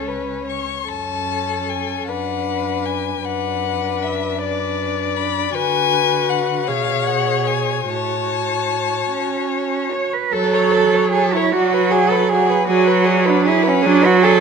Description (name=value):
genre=classical, slow romantic movement for string quartet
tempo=51 BPM (dotted quarters)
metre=6/8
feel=uneven beats, rubato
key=F# minor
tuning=A4 = 437 Hz
part: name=warm violin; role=melody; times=0.0-14.4 s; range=A4 to C#6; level=-23 LUFS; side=left 12 dB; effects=none
part: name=rich violin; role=second line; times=0.0-14.4 s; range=F#4 to D5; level=-23 LUFS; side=left 6 dB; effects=none
part: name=rich viola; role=accompaniment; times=0.0-14.4 s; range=F#3 to G#4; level=-21 LUFS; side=right 3 dB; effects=none
part: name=rich cello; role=bass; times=0.0-14.4 s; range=C#2 to C#5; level=-20 LUFS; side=right 7 dB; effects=none
room=moderate concert hall reverb, RT60 1.8 s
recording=none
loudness=-16 LUFS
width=side -6 dB against mid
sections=0.0-10.3 A section; 10.3-14.4 B section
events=none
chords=0.0 N.C.; 0.9 F#m; 2.1 Bm/F#; 5.6 Bm6/D; 6.7 C#5/B; 7.9 F#m/A; 10.3 F#m; 11.5 Bm/F#; 12.7 G#m7b5/F#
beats=| 0.90 2.09 | 3.26 4.42 | 5.57 6.70 | 7.90 9.11 | 10.32 11.51 | 12.67 13.84